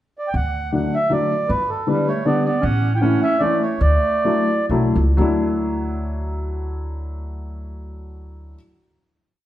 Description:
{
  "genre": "musette waltz",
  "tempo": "120-158 BPM",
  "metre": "3/4",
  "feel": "swing 54% on 8ths",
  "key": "D major",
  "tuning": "A4 = 443 Hz",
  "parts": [
    { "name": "mellow accordion", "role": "melody", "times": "0.2-4.7 s", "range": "A4 to G5", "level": "-21 LUFS", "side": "right 2 dB", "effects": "none" },
    { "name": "upright bass", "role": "bass", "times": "0.3-8.5 s", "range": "G1 to D2", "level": "-22 LUFS", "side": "equal", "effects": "none" },
    { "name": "dark upright piano", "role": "accompaniment", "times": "0.7-8.6 s", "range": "D3 to E4", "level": "-22 LUFS", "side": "left 2 dB", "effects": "none" },
    { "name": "mellow clarinet", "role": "second line", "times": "1.9-4.7 s", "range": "G3 to E4", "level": "-24 LUFS", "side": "right 4 dB", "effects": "none" }
  ],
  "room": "wet recital hall reverb, RT60 1.4 s",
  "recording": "none",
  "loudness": "-17 LUFS",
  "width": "side -13 dB against mid",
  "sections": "0.0-0.3 pickup bar; 0.3-5.2 A section; 5.2-8.1 final chord",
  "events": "slowing down 2.6-5.2",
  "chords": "0.3 D; 1.5 G; 2.6 A; 3.8 Dadd9"
}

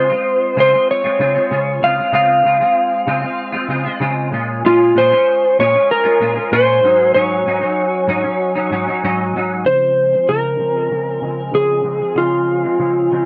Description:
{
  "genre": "indie pop",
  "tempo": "96 BPM",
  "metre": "4/4",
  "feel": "straight",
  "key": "Db major",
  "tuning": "A4 = 439 Hz",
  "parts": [
    { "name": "electric slide guitar", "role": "melody", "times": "0.0-13.3 s", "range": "F4 to F5", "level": "-16 LUFS", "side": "equal", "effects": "lush chorus, tape echo" },
    { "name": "semi-hollow electric guitar", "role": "accompaniment", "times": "0.0-13.3 s", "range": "Ab2 to F4", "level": "-22 LUFS", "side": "equal", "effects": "ensemble chorus, vibrato effect, low-pass filter" }
  ],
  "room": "moderate studio ambience, RT60 0.5 s",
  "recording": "nothing above 7.8 kHz",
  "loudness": "-16 LUFS",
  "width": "mono",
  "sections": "0.0-9.7 A section; 9.7-13.3 B section",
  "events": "filter sweep on clean electric guitar 9.7-13.3",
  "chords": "0.0 Dbmaj7; 4.3 Bbm7; 6.8 Ab7sus4; 9.7 Dbmaj7"
}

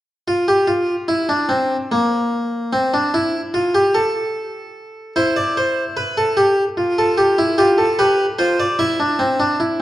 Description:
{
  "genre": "classical, baroque-style 3-part fugue for harpsichord",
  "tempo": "49 BPM (dotted quarters)",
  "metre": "6/8",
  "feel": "straight",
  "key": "unclear",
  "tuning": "A4 = 440 Hz",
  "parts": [
    { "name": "harpsichord", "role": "solo", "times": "0.3-9.8 s", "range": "Bb3 to E5", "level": "-16 LUFS", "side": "equal", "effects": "none" }
  ],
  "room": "wet recital hall reverb, RT60 1.8 s",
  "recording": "worn, warbling old tape, cassette tape, warbly pitch drift",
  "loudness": "-15 LUFS",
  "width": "side -14 dB against mid",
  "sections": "0.3-9.8 A section",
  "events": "none",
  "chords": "0.3 N.C.; 5.2 C/E; 6.4 Fmaj9; 7.6 G7/F; 8.8 C"
}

